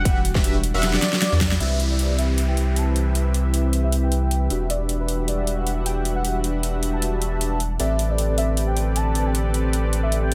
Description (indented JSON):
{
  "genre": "future bass",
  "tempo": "155 BPM",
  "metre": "4/4",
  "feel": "swing 54% on 16ths, half-time",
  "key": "unclear",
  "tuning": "A4 = 440 Hz",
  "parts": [
    { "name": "warm velvety synth lead", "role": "melody", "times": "0.0-10.3 s", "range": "B4 to A5", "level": "-32 LUFS", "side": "equal", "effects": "chorus, sidechain pumping, dub echo" },
    { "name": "airy breathy pad", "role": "sustained chords", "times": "0.0-10.3 s", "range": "D3 to F#5", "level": "-36 LUFS", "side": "equal", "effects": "chorus, sidechain pumping" },
    { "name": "saturated sub bass", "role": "bass", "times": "0.0-10.3 s", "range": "E1 to E2", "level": "-24 LUFS", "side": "equal", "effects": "sidechain pumping" },
    { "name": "big bright polysynth", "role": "riff", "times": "0.1-10.3 s", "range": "C4 to F#5", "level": "-30 LUFS", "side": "equal", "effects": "chorus, sidechain pumping" },
    { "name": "big-room dance drum kit", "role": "drums", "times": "0.1-10.3 s", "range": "hi-hat, snare drum", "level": "-28 LUFS", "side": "equal", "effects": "none" },
    { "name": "electronic kick drum", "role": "drums", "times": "0.1-1.5 s", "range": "none", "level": "-24 LUFS", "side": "equal", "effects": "none" },
    { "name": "downlifter", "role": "sound effects", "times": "1.6-4.7 s", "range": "none", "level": "-36 LUFS", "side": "equal", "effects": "none" }
  ],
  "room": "little or no reverb",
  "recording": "none",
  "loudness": "-22 LUFS",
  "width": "mono",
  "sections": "0.0-1.6 A section; 1.6-10.3 B section",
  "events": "drop 0.0-1.6; drum fill 0.8-1.6; band accent 1.5",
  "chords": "0.0 Em9; 1.6 Cmaj7; 4.5 Em9; 7.8 Am11"
}